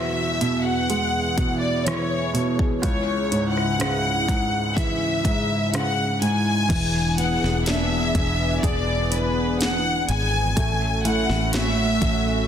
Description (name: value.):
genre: pop ballad.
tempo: 62 BPM.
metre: 4/4.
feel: straight.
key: unclear.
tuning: A4 = 441 Hz.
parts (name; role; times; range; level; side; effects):
warm studio violin section; melody; 0.0-12.5 s; B4 to G#5; -25 LUFS; left 2 dB; none.
felt-muted upright piano; accompaniment; 0.0-12.5 s; C#2 to G#4; -26 LUFS; right 1 dB; none.
chorused pulse-width pad; sustained chords; 0.0-12.5 s; C#2 to G#4; -28 LUFS; equal; none.
house drum kit; drums; 0.4-12.2 s; crash cymbal, hi-hat, kick drum, rim click, snare drum; -26 LUFS; equal; soft clipping on snare.
fingerpicked steel-string acoustic guitar; arpeggios; 6.7-12.5 s; A2 to G#4; -29 LUFS; left 2 dB; none.
fingered electric bass; bass; 6.7-12.5 s; E1 to A1; -25 LUFS; equal; none.
room: moderate concert hall reverb, RT60 2.2 s.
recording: dense, heavily limited modern master.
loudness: -20 LUFS.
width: side -9 dB against mid.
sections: 0.0-6.7 A section; 6.7-12.5 B section.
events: none.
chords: 0.0 Eadd9; 2.8 C#m; 6.7 E7; 10.6 A6.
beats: 0.89 1.86 | 2.83 3.79 4.76 5.73 | 6.70 7.67 8.63 9.60 | 10.57 11.54.